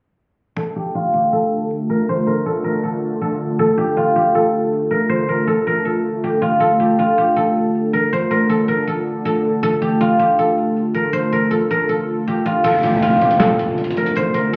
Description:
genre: hip hop, trap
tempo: 159 BPM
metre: 4/4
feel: half-time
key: D minor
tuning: A4 = 441 Hz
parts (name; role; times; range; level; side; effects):
- guzheng; melody; 0.6-14.6 s; F4 to C5; -20 LUFS; equal; low-pass filter
- sweeping resonant pad; sustained chords; 0.6-14.6 s; D3 to A4; -22 LUFS; equal; chorus, low-pass filter
- lo-fi sampler-style drum kit; drums; 12.6-14.6 s; crash cymbal, handclaps, hi-hat, snare drum; -26 LUFS; equal; none
- downlifter; sound effects; 12.6-14.6 s; none; -26 LUFS; equal; none
room: moderate echo chamber reverb, RT60 1.4 s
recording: heard muffled through a wall, club reverb, EQ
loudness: -18 LUFS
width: mono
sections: 0.6-12.6 A section; 12.6-14.6 B section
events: filter sweep 0.6-12.6; kick muted 12.6-14.6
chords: 0.6 Dm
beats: | 0.57 0.95 1.33 1.70 | 2.08 2.46 2.84 3.21 | 3.59 3.97 4.35 4.72 | 5.10 5.48 5.86 6.23 | 6.61 6.99 7.36 7.74 | 8.12 8.50 8.87 9.25 | 9.63 10.01 10.38 10.76 | 11.14 11.52 11.89 12.27 | 12.65 13.03 13.40 13.78 | 14.16 14.53

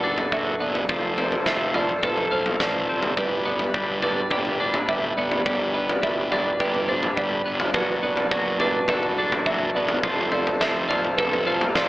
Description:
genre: post-rock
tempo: 105 BPM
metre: 4/4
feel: straight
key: G major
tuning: A4 = 438 Hz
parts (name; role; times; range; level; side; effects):
- pedal harmonium; sustained chords; 0.0-11.9 s; D4 to B5; -29 LUFS; equal; none
- felt-muted upright piano; arpeggios; 0.0-11.9 s; B4 to E5; -28 LUFS; right 2 dB; slapback echo
- twelve-string electric guitar; arpeggios; 0.0-11.9 s; F3 to A4; -27 LUFS; left 1 dB; wide subtle chorus, slapback echo
- fuzz fingered electric bass; bass; 0.0-11.9 s; E1 to B1; -28 LUFS; equal; overdrive
- huge arena drum kit; drums; 0.2-11.9 s; kick drum, snare drum, toms; -26 LUFS; left 1 dB; none
room: moderate lush hall reverb, RT60 1.7 s, small room ambience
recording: AM radio sound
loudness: -21 LUFS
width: side -17 dB against mid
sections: 0.0-11.9 A section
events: none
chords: 0.0 D6/F#; 0.9 F; 3.2 G; 7.8 D6/F#; 10.0 F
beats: 0.32 | 0.90 1.47 2.04 2.61 | 3.18 3.75 4.32 4.89 | 5.46 6.04 6.61 7.18 | 7.75 8.32 8.89 9.46 | 10.04 10.61 11.18 11.75

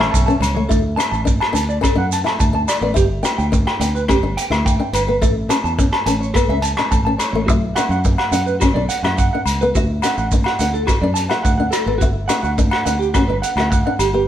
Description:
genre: highlife guitar band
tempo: 106 BPM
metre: 4/4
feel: straight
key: D major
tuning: A4 = 440 Hz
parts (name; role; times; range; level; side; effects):
- fingerpicked old ladder-braced acoustic guitar; accompaniment; 0.0-14.3 s; A3 to E4; -23 LUFS; left 4 dB; none
- electric guitar at the edge of break-up; arpeggios; 0.0-14.2 s; F#4 to A5; -22 LUFS; right 3 dB; none
- fingered electric bass; bass; 0.0-14.3 s; G1 to F#2; -21 LUFS; equal; none
- vintage drum kit; drums; 0.0-14.1 s; hi-hat, kick drum, rim click; -20 LUFS; equal; none
- agogo bells; percussion; 0.0-14.1 s; none; -25 LUFS; left 4 dB; none
- congas; percussion; 0.0-0.7 s; none; -28 LUFS; right 2 dB; none
- maracas; percussion; 0.1-14.1 s; none; -30 LUFS; right 7 dB; none
room: moderate stone room reverb, RT60 1.0 s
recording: band playing live in one room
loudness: -15 LUFS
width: side -11 dB against mid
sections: 0.7-14.3 A section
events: none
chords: 0.0 A; 0.7 D; 3.0 G; 5.2 A; 7.5 Bm; 9.7 D; 12.0 Gmaj7(no3)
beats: 0.14 | 0.70 1.26 1.83 2.40 | 2.96 3.53 4.09 4.66 | 5.22 5.79 6.35 6.92 | 7.49 8.05 8.62 9.18 | 9.75 10.31 10.88 11.45 | 12.01 12.58 13.14 13.71

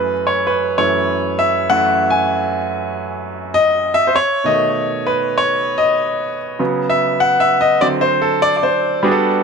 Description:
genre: soul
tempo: 98 BPM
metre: 4/4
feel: straight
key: F# dorian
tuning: A4 = 440 Hz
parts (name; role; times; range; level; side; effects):
- clear grand piano; solo; 0.0-9.4 s; F#2 to G#5; -14 LUFS; equal; none
room: light reverb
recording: none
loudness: -14 LUFS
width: side -5 dB against mid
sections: 0.0-9.0 A section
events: grand piano solo 0.0-9.0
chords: 0.0 F#m9; 4.2 B7; 6.6 C#7sus4; 7.8 D7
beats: 0.47 1.09 | 1.70 2.31 2.92 3.54 | 4.15 4.76 5.38 5.99 | 6.60 7.21 7.83 8.44 | 9.05

